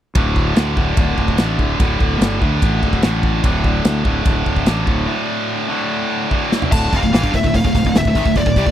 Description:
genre	heavy metal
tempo	146 BPM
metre	4/4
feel	straight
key	D minor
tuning	A4 = 440 Hz
part	heavy high-gain guitar	riff	0.2-8.7 s	D2 to G3	-18 LUFS	equal	distortion
part	fuzz fingered electric bass	bass	0.2-8.7 s	D1 to D2	-20 LUFS	equal	overdrive
part	modern studio drum kit	drums	0.2-8.7 s	crash cymbal, hi-hat, kick drum, ride cymbal, snare drum, toms	-17 LUFS	equal	none
part	high-gain lead guitar	melody	6.7-8.7 s	D5 to A5	-20 LUFS	left 3 dB	distortion, slapback echo
room	little or no reverb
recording	dry, close 1970s-style studio recording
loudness	-14 LUFS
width	side -11 dB against mid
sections	0.2-6.7 A section; 6.7-8.7 B section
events	break 5.1-6.7; drum fill 6.3-6.7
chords	0.2 D5; 6.7 Dm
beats	| 0.16 0.57 0.98 1.39 | 1.80 2.21 2.62 3.03 | 3.44 3.85 4.26 4.67 | 5.08 5.49 5.90 6.31 | 6.72 7.13 7.54 7.95 | 8.36

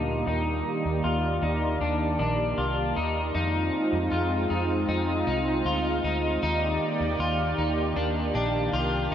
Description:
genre	dream pop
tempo	78 BPM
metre	4/4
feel	straight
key	Eb major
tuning	A4 = 443 Hz
part	warm analog pad	sustained chords	0.0-9.1 s	Bb2 to D5	-28 LUFS	right 1 dB	chorus, low-pass filter
part	electric guitar at the edge of break-up	arpeggios	0.0-9.1 s	D4 to F4	-28 LUFS	left 2 dB	lush chorus, low-pass filter, tape echo
part	vintage muted fingered electric bass	bass	0.0-9.1 s	F1 to F2	-30 LUFS	equal	none
room	wet huge ambient reverb, RT60 7.3 s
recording	dreamy mix soaked in reverb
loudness	-24 LUFS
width	side -9 dB against mid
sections	0.0-9.1 A section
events	none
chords	0.3 Ebmaj7; 3.3 Fm7; 6.4 Ebmaj7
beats	| 0.27 1.04 1.81 2.58 | 3.35 4.12 4.88 5.66 | 6.42 7.19 7.96 8.73

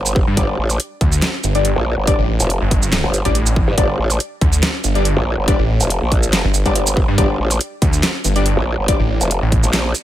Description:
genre	heavy wobble dubstep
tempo	141 BPM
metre	4/4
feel	swing 53% on 16ths, half-time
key	G minor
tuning	A4 = 441 Hz
part	growl bass	bass	0.0-9.9 s	F1 to G2	-18 LUFS	equal	chorus, overdrive
part	dubstep drum kit	drums	0.1-10.0 s	handclaps, hi-hat, shaker, snare drum	-19 LUFS	right 1 dB	overdrive
part	electronic kick drum	drums	0.2-9.6 s	none	-17 LUFS	equal	none
part	snarling distorted saw bass	bass	0.3-9.6 s	G1 to G2	-17 LUFS	equal	distortion, overdrive
part	orchestra-hit-like synth stab	stabs	0.4-9.0 s	G3 to D5	-23 LUFS	left 4 dB	built-in reverb, dub echo
room	digital ambience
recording	none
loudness	-14 LUFS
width	side -13 dB against mid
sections	0.0-10.0 A section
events	none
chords	0.0 G5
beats	| 0.37 0.80 1.22 1.65 | 2.07 2.50 2.92 3.35 | 3.78 4.20 4.63 5.05 | 5.48 5.90 6.33 6.75 | 7.18 7.61 8.03 8.46 | 8.88 9.31 9.73

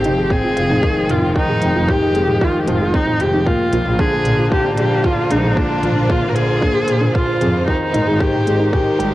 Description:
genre	piano and strings electronica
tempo	114 BPM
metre	4/4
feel	straight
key	unclear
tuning	A4 = 440 Hz
part	warm viola	melody	0.0-9.1 s	D4 to Bb4	-19 LUFS	equal	cassette tape
part	clear symphonic string section	sustained chords	0.0-9.1 s	F3 to G5	-24 LUFS	equal	none
part	warm upright piano	riff	0.0-9.1 s	D3 to Ab4	-21 LUFS	left 1 dB	none
part	organic electronic drum kit	drums	0.0-9.1 s	hi-hat, toms	-26 LUFS	equal	none
part	sub drop	sound effects	0.0-1.4 s	none	-33 LUFS	equal	none
part	soft round pluck	arpeggios	0.1-9.0 s	D4 to Ab4	-26 LUFS	right 1 dB	chorus, sidechain pumping, tape echo
part	rich studio double bass section	bass	0.1-9.1 s	F1 to Bb2	-22 LUFS	equal	sidechain pumping
part	electronic kick drum	drums	0.3-8.8 s	none	-20 LUFS	equal	cassette tape
room	light reverb, studio ambience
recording	home recording on cassette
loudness	-14 LUFS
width	side -16 dB against mid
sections	0.0-9.1 A section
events	impact 0.0-1.4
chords	0.0 Fm7; 3.5 Bb7; 7.7 Abmaj7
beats	0.31 0.84 | 1.36 1.89 2.42 2.94 | 3.47 3.99 4.52 5.05 | 5.57 6.10 6.63 7.15 | 7.68 8.20 8.73

